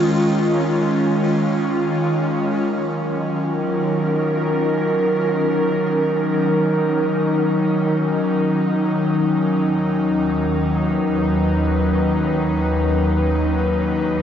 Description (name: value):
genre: ambient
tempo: free time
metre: none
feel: none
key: Eb minor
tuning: A4 = 440 Hz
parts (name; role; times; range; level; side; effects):
- airy breathy pad; sustained chords; 0.0-14.2 s; D#2 to Db5; -18 LUFS; left 1 dB; chorus, shimmer reverb
- buzzing kalimba; arpeggios; 0.0-2.1 s; Ab3 to F4; -25 LUFS; right 1 dB; diffuse ambient delay, shimmer reverb
- organ-like drone; drone; 0.0-14.2 s; Eb3; -24 LUFS; right 1 dB; ensemble chorus, built-in reverb
room: wet concert hall reverb, RT60 2.0 s, small room reverb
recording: dark, warm production, nothing above 7.7 kHz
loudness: -17 LUFS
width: side -9 dB against mid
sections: 0.0-2.7 A section; 2.7-14.2 B section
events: none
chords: 0.0 Db/Eb; 2.7 Ebm7; 9.6 Badd9/D#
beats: free time